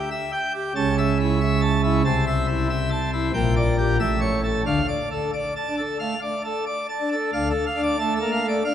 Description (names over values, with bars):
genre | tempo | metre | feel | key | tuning
classical, organ toccata | 92 BPM | 4/4 | straight | D minor | A4 = 440 Hz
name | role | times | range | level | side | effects
pipe organ, plenum | solo | 0.0-8.7 s | A1 to A5 | -20 LUFS | equal | none
room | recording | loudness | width
wet church reverb, RT60 2.5 s | none | -20 LUFS | side -9 dB against mid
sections
0.0-7.3 A section; 7.3-8.7 B section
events
none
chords
0.0 Em; 0.8 A/C#; 2.1 Am/C; 3.3 Gm/Bb; 4.0 A; 4.7 Dm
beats
0.12 0.77 1.42 | 2.06 2.70 3.35 4.00 | 4.66 5.33 6.00 6.67 | 7.34 7.99 8.64